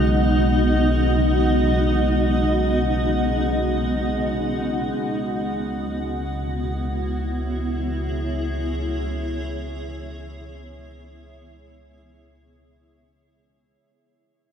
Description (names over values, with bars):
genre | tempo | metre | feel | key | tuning
ambient | free time | none | none | C# minor | A4 = 440 Hz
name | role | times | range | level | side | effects
granular cloud pad | sustained chords | 0.0-13.8 s | B3 to F#5 | -23 LUFS | equal | built-in reverb
warm sub bass | bass | 0.0-13.8 s | B1 to C#2 | -25 LUFS | equal | tube saturation
analog drone | drone | 0.0-13.9 s | C#3 to G#3 | -28 LUFS | left 1 dB | chorus
room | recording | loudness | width
wet huge ambient reverb, RT60 8.8 s | cassette tape | -20 LUFS | side -8 dB against mid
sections
0.0-13.8 A section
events
filter sweep on ambient pad 0.0-13.8; fade-out 2.1-13.8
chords
0.0 B; 5.0 C#m7